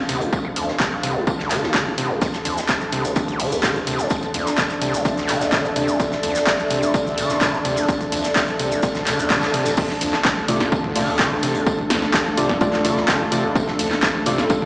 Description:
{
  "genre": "acid house",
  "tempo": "127 BPM",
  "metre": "4/4",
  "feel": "straight",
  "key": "D minor",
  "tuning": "A4 = 440 Hz",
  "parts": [
    { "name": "overdriven acid bass", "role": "riff", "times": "0.0-14.7 s", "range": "C2 to D3", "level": "-24 LUFS", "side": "equal", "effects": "tube saturation, sidechain pumping, tape echo" },
    { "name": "granular cloud pad", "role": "texture", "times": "0.0-14.7 s", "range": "D4 to A5", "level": "-26 LUFS", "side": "equal", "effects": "built-in reverb, sidechain pumping" },
    { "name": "warm sub bass", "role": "bass", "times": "0.1-14.4 s", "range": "D1 to D2", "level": "-37 LUFS", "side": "equal", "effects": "tube saturation, sidechain pumping" },
    { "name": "loose indie drum kit", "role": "drums", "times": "0.1-14.6 s", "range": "hi-hat, snare drum, tambourine", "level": "-32 LUFS", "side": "equal", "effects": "sidechain pumping on hats, high-pass filter on hats, high-pass filter on snare, sidechain pumping on perc, high-pass filter on perc, high-pass filter on room" },
    { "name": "punchy analog drum machine", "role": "drums", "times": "0.1-14.7 s", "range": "crash cymbal, handclaps, hi-hat, snare drum, toms", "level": "-23 LUFS", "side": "equal", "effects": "overdrive" },
    { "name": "electronic kick drum", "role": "drums", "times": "0.3-14.6 s", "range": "none", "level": "-24 LUFS", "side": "equal", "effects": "overdrive" },
    { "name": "dark analog pad", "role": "sustained chords", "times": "2.2-14.7 s", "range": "A3 to D5", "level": "-26 LUFS", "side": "equal", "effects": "chorus, sidechain pumping" },
    { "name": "shekere", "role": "percussion", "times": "2.2-9.8 s", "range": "none", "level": "-34 LUFS", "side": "equal", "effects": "none" },
    { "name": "deep mellow chord stab", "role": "stabs", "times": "10.5-14.3 s", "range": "A3 to D5", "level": "-24 LUFS", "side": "equal", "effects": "chorus, tape echo" }
  ],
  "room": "wet lush hall reverb, RT60 1.9 s",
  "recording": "played on a big sound system in a bare room, large studio reverb, small speaker sound",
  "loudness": "-18 LUFS",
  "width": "side -25 dB against mid",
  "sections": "0.0-9.8 A section; 9.8-14.7 B section",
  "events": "drum fill 9.3-9.8; band accent 9.3; drop 9.8-14.7",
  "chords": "0.0 Dm",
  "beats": "| 0.33 0.80 1.27 1.75 | 2.22 2.69 3.16 3.63 | 4.11 4.58 5.05 5.53 | 6.00 6.47 6.94 7.41 | 7.89 8.36 8.83 9.30 | 9.78 10.25 10.72 11.19 | 11.67 12.14 12.61 13.08 | 13.56 14.03 14.50"
}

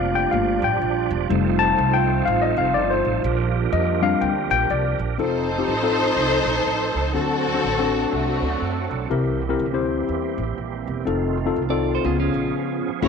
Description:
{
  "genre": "uptempo gospel",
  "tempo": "123 BPM",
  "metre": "4/4",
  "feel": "swing 60% on 8ths",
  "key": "unclear",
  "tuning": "A4 = 440 Hz",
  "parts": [
    { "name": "mellow tine electric piano", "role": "accompaniment", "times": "0.0-13.1 s", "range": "C3 to A5", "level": "-22 LUFS", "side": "left 8 dB", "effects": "none" },
    { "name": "bright tonewheel organ", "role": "sustained chords", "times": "0.0-13.1 s", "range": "Eb3 to C#6", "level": "-30 LUFS", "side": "right 13 dB", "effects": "fast rotary speaker, chorus vibrato" },
    { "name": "mellow French horn section", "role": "sustained chords", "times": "0.0-13.0 s", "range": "F3 to F4", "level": "-29 LUFS", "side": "right 13 dB", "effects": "none" },
    { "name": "upright bass", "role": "bass", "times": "0.0-13.1 s", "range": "E1 to F#2", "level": "-26 LUFS", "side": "right 2 dB", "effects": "none" },
    { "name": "warm symphonic string section", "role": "melody", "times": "5.2-9.1, 13.0-13.1 s", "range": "A3 to C#5", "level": "-22 LUFS", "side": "left 1 dB", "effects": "slapback echo" },
    { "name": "clean electric guitar", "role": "second line", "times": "11.7-12.9 s", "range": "Db4 to D5", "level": "-27 LUFS", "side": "right 12 dB", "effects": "none" }
  ],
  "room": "moderate plate reverb, RT60 3.0 s",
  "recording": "1960s-style stereo with parts hard left and right",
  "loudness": "-19 LUFS",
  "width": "side -6 dB against mid",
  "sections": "0.0-5.2 A section; 5.2-13.0 B section",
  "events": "tine electric piano solo 0.0-5.2; break 12.5-13.0",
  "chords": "0.0 Gm7; 1.3 F7; 3.2 Bb6; 5.2 F7; 7.1 D7; 9.1 C7; 11.1 F7; 12.0 Db7",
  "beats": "0.33 0.81 | 1.30 1.79 2.27 2.76 | 3.25 3.73 4.22 4.71 | 5.19 5.68 6.17 6.66 | 7.15 7.64 8.13 8.62 | 9.11 9.60 10.09 10.58 | 11.07 11.56 12.05 12.54 | 13.02"
}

